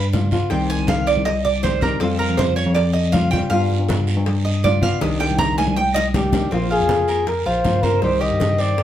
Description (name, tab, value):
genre	latin, Cuban son and guajira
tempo	160 BPM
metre	4/4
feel	straight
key	C minor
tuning	A4 = 440 Hz
part	Cuban tres	arpeggios	0.0-8.8 s	C4 to Bb5	-22 LUFS	right 3 dB	none
part	bell-like tine electric piano	bass	0.0-8.8 s	Bb1 to G2	-21 LUFS	equal	fast stereo tremolo
part	nylon-string guitar	accompaniment	0.1-8.8 s	C3 to G4	-24 LUFS	left 3 dB	none
part	bongos	percussion	0.1-8.8 s	none	-29 LUFS	left 3 dB	none
part	congas	percussion	0.1-8.8 s	none	-25 LUFS	equal	none
part	guiro	percussion	0.1-8.8 s	none	-34 LUFS	right 4 dB	none
part	trumpet with bucket mute	melody	6.2-8.8 s	F4 to Eb5	-20 LUFS	left 1 dB	plate reverb
room	wet studio reverb, RT60 0.6 s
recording	heard from further back in the room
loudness	-16 LUFS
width	side -11 dB against mid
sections	0.0-6.5 A section; 6.5-8.8 B section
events	Cuban tres solo 0.0-6.5; drum fill 5.0-6.5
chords	0.0 G7; 0.5 Cm; 2.0 Fsus2; 3.5 G7; 5.0 Cmadd9; 6.5 Bbsus2; 8.0 Cmadd9